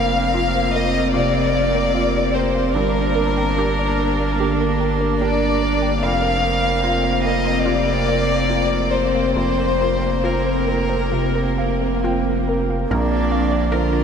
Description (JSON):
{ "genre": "neoclassical piano and strings", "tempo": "64-76 BPM", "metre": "4/4", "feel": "rubato", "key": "unclear", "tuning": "A4 = 440 Hz", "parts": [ { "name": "warm chamber violin section", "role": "melody", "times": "0.0-14.0 s", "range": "Bb4 to F5", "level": "-22 LUFS", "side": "left 3 dB", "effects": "tape echo" }, { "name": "warm cello", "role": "second line", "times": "0.0-14.0 s", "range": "Bb3 to D4", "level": "-27 LUFS", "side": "right 5 dB", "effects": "none" }, { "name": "felt-muted upright piano", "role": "accompaniment", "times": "0.0-14.0 s", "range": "Bb1 to Bb5", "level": "-26 LUFS", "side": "right 3 dB", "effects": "none" }, { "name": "warm viola", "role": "accompaniment", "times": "0.0-14.0 s", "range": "C4 to F4", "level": "-27 LUFS", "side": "right 2 dB", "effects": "none" }, { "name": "warbly tape-like pad", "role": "sustained chords", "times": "0.0-14.0 s", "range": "D3 to C5", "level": "-27 LUFS", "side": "left 2 dB", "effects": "chorus, built-in reverb" }, { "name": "resonant blip pluck", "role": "arpeggios", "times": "0.0-14.0 s", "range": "F4 to Bb5", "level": "-28 LUFS", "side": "right 1 dB", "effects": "chorus, tape echo" }, { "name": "saturated sub bass", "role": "bass", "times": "0.0-14.0 s", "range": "F1 to Bb1", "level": "-23 LUFS", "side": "equal", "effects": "none" } ], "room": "wet huge ambient reverb, RT60 7.9 s", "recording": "dreamy mix soaked in reverb", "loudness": "-17 LUFS", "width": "side -7 dB against mid", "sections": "0.0-12.9 A section; 12.9-14.0 B section", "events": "none", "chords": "0.0 Fsus4; 2.7 Gm; 6.0 Fsus4; 12.9 Bbadd9" }